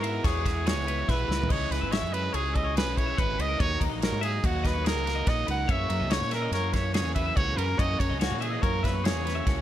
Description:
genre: math rock and midwest emo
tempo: 143 BPM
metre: 5/4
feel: straight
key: unclear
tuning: A4 = 439 Hz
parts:
  - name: bright trumpet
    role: melody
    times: 0.0-9.6 s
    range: F#4 to F#5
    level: -31 LUFS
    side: right 3 dB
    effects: none
  - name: twelve-string electric guitar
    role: arpeggios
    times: 0.0-9.6 s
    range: G#4 to F#5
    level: -35 LUFS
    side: left 11 dB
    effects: spring reverb
  - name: overdriven electric guitar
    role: riff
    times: 0.0-9.6 s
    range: F#2 to E4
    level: -34 LUFS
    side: right 1 dB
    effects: none
  - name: fingered electric bass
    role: bass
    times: 0.0-9.6 s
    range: G#1 to A#2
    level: -30 LUFS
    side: equal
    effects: none
  - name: loose indie drum kit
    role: drums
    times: 0.0-9.6 s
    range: crash cymbal, kick drum, ride cymbal, snare drum, toms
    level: -29 LUFS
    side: equal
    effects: none
room: little or no reverb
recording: none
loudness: -24 LUFS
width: side -12 dB against mid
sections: 0.0-9.6 A section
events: drum fill 1.3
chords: 0.0 E6; 1.5 C#m11; 3.6 D#m7; 5.7 F#7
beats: 0.24 0.66 1.08 | 1.50 1.92 2.34 2.76 3.18 | 3.60 4.01 4.43 4.85 5.27 | 5.69 6.11 6.53 6.95 7.37 | 7.78 8.20 8.62 9.04 9.46

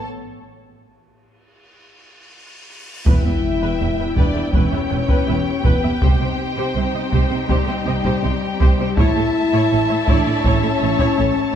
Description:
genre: cinematic, epic orchestral film score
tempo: 81 BPM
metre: 4/4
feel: straight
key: unclear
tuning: A4 = 439 Hz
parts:
  - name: warm symphonic violin section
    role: second line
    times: 0.0-11.5 s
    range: G4 to E5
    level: -29 LUFS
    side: left 2 dB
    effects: none
  - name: dark French horn section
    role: sustained chords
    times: 0.0-11.5 s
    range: G3 to E4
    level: -22 LUFS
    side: left 4 dB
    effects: none
  - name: cymbal swell and sub drop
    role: sound effects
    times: 2.1-6.0 s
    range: none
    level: -31 LUFS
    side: equal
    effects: none
  - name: rich symphonic violin section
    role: melody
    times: 3.1-11.6 s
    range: G5 to A5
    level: -29 LUFS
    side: left 2 dB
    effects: none
  - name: warm symphonic viola section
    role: accompaniment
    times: 3.1-11.3 s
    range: E4 to G5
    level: -27 LUFS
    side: right 1 dB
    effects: none
  - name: warm studio string section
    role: sustained chords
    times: 3.1-11.6 s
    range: A3 to G5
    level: -27 LUFS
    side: equal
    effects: none
  - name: dark symphonic double bass section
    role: bass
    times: 3.1-11.3 s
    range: E1 to C2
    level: -23 LUFS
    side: right 4 dB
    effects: none
  - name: rich symphonic cello section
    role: bass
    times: 3.1-11.3 s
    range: E2 to C3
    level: -25 LUFS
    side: right 3 dB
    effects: none
  - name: taiko ensemble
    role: drums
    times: 3.1-11.6 s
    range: none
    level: -19 LUFS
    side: equal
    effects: none
  - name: timpani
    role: percussion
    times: 3.1-4.1 s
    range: E2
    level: -26 LUFS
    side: equal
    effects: none
room: moderate concert hall reverb, RT60 2.3 s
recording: dark, warm production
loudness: -16 LUFS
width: side -9 dB against mid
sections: 0.0-3.1 A section; 3.1-11.6 A section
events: break 0.1-3.1; cymbal swell 2.1-3.1; impact 3.1-6.0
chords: 0.1 N.C.; 3.1 Em; 6.0 Cm; 9.0 A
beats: | 0.05 0.81 1.56 2.32 | 3.07 3.80 4.54 5.28 | 6.02 6.76 7.49 8.23 | 8.98 9.71 10.45 11.18

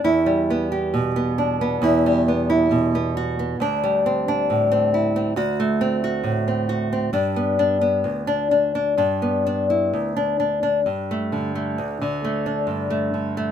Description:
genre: folk, solo fingerstyle acoustic guitar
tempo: 67 BPM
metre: 4/4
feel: rubato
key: G major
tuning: A4 = 435 Hz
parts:
  - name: nylon-string guitar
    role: solo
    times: 0.0-13.5 s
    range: D2 to G4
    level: -19 LUFS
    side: equal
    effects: none
room: light reverb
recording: minimal, uncompressed stereo recording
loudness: -19 LUFS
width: side -9 dB against mid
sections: 0.0-10.8 A section; 10.8-13.5 B section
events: none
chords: 0.1 Em; 3.6 D7sus4; 5.4 D7; 7.2 G; 10.8 Gsus2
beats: | 0.06 0.96 1.84 2.73 | 3.61 4.50 5.38 6.26 | 7.15 8.05 8.97 9.91 | 10.85 11.77 12.68

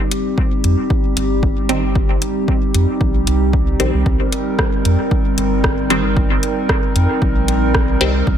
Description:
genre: dub techno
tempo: 114 BPM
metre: 4/4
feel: swing 54% on 16ths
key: C minor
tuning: A4 = 440 Hz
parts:
  - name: warbly tape-like pad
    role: sustained chords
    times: 0.0-8.4 s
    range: G3 to Bb4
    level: -19 LUFS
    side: right 1 dB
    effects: chorus, built-in reverb, vintage 12-bit sampler grit, sidechain pumping
  - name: deep house drum kit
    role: drums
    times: 0.1-8.1 s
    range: hi-hat, rim click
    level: -22 LUFS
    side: equal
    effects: overdrive, dub echo
  - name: electronic kick drum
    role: drums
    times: 0.4-8.4 s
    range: none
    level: -19 LUFS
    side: equal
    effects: overdrive
  - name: soft dub sub bass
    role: bass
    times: 0.6-8.4 s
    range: G1 to F2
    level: -18 LUFS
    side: equal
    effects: sidechain pumping
  - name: filtered dub chord stab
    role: stabs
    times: 1.7-8.1 s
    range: Eb3 to C4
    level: -22 LUFS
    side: equal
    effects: phaser, sidechain pumping, dub echo
room: light reverb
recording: none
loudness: -14 LUFS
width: side -9 dB against mid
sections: 0.0-8.4 A section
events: none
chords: 0.0 Cm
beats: 0.38 0.90 1.43 | 1.96 2.48 3.01 3.54 | 4.06 4.59 5.11 5.64 | 6.17 6.69 7.22 7.75 | 8.27

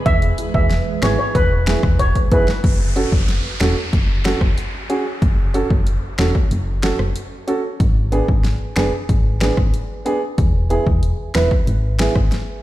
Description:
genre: dancehall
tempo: 93 BPM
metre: 4/4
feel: straight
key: F# minor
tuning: A4 = 441 Hz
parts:
  - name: airy breathy pad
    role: sustained chords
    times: 0.0-2.6 s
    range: E3 to B4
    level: -29 LUFS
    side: right 3 dB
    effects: chorus, phaser, sidechain pumping
  - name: steel pan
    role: melody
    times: 0.1-2.4 s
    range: B4 to E5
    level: -22 LUFS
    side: right 1 dB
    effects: tape echo
  - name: solid FM bass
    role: bass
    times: 0.1-12.3 s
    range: E1 to G#1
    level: -18 LUFS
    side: equal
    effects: none
  - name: deep house drum kit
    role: drums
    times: 0.1-12.5 s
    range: finger snaps, hi-hat, kick drum, rim click, snare drum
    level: -19 LUFS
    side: equal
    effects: overdrive
  - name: dark baby grand piano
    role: accompaniment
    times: 0.4-12.1 s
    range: B3 to B4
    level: -23 LUFS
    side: right 2 dB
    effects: none
  - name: downlifter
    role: sound effects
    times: 2.6-7.8 s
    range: none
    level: -30 LUFS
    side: equal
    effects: none
room: digital ambience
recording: played on a big sound system in a bare room, stone room reverb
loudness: -15 LUFS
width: side -15 dB against mid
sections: 0.0-2.6 A section; 2.6-12.6 B section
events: drum fill 2.0-2.6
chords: 0.1 E; 2.6 F#m; 7.8 G#dim; 10.4 E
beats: | 0.06 0.70 1.35 1.99 | 2.64 3.28 3.93 4.58 | 5.22 5.87 6.51 7.16 | 7.80 8.45 9.09 9.74 | 10.38 11.03 11.67 12.32

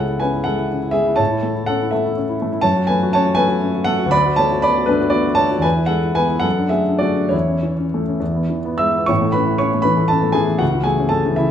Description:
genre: classical, romantic character piece for solo piano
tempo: 64-86 BPM (dotted quarters)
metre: 6/8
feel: rubato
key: A major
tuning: A4 = 439 Hz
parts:
  - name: warm grand piano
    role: solo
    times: 0.0-11.5 s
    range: A1 to E6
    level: -15 LUFS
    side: equal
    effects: none
room: wet stone room reverb, RT60 1.1 s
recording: none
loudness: -15 LUFS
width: side -9 dB against mid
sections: 0.0-9.1 A section; 9.1-11.5 B section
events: none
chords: 0.0 C#m; 1.2 A; 2.6 F#m; 4.1 Bm7/D; 5.6 E; 6.4 D/F#; 7.3 A/E; 8.2 E; 9.1 A; 10.6 A/C#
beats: 0.46 | 1.19 1.93 | 2.64 3.37 | 4.12 4.89 | 5.64 6.45 | 7.33 8.20 | 9.10 9.86 | 10.62 11.38

